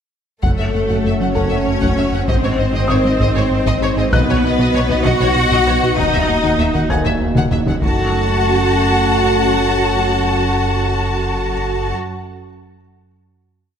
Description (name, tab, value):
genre	cinematic, hybrid orchestral and electronic film score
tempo	65 BPM (dotted quarters)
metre	6/8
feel	straight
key	F# dorian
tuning	A4 = 442 Hz
part	clear symphonic violin section	melody	0.4-11.9 s	C#5 to A5	-24 LUFS	left 4 dB	none
part	rich symphonic violin section	second line	0.4-11.9 s	A4 to F#5	-23 LUFS	left 3 dB	none
part	rich symphonic viola section	accompaniment	0.4-11.9 s	A3 to F#4	-23 LUFS	equal	none
part	dark analog pad	sustained chords	0.4-11.9 s	A3 to F#5	-23 LUFS	equal	chorus
part	mellow French horn section	sustained chords	0.4-11.9 s	C#4 to D#5	-27 LUFS	left 2 dB	none
part	soft round pluck	arpeggios	0.4-7.8 s	D#3 to B4	-28 LUFS	left 3 dB	chorus, digital delay
part	rubbery square bass	riff	0.4-7.8 s	D#2 to B3	-22 LUFS	right 2 dB	none
part	rich symphonic double bass section	bass	0.4-11.9 s	F#1 to F#2	-23 LUFS	right 2 dB	none
part	warm sub bass	bass	0.4-11.9 s	D#1 to B1	-25 LUFS	equal	none
part	warm symphonic cello section	bass	0.4-11.9 s	A3 to F#4	-22 LUFS	right 2 dB	none
part	taiko ensemble	drums	0.4-9.0 s	none	-22 LUFS	equal	none
part	felt-muted upright piano	texture	1.4-7.9 s	A4 to G#6	-27 LUFS	left 2 dB	digital delay
room	moderate scoring stage reverb, RT60 1.7 s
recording	none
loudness	-14 LUFS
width	side -8 dB against mid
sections	0.4-7.8 theme; 7.8-11.5 final chord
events	drum fill 7.4-7.8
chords	0.4 F#m; 2.3 G#; 4.1 B; 6.0 D#m; 7.8 F#m